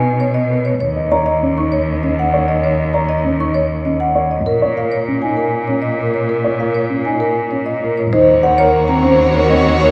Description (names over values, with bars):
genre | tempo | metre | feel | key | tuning
classical, minimalist pattern music | 197 BPM | 6/4 | straight | unclear | A4 = 440 Hz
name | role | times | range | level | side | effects
marimba with medium mallets | melody | 0.0-9.9 s | A#4 to C#6 | -19 LUFS | equal | none
rich cello | bass | 0.0-9.9 s | Eb2 to B2 | -21 LUFS | equal | none
dark grand piano | arpeggios | 0.5-9.9 s | C4 to D#5 | -21 LUFS | equal | none
rich chamber violin section | sustained chords | 8.1-9.9 s | Gb4 to Db5 | -23 LUFS | equal | none
room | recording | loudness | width
wet recital hall reverb, RT60 1.4 s | heard from further back in the room | -16 LUFS | mono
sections
0.0-8.1 A section; 8.1-9.9 B section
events
none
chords
0.0 B; 0.8 N.C.; 4.5 A#m; 8.1 Ebm7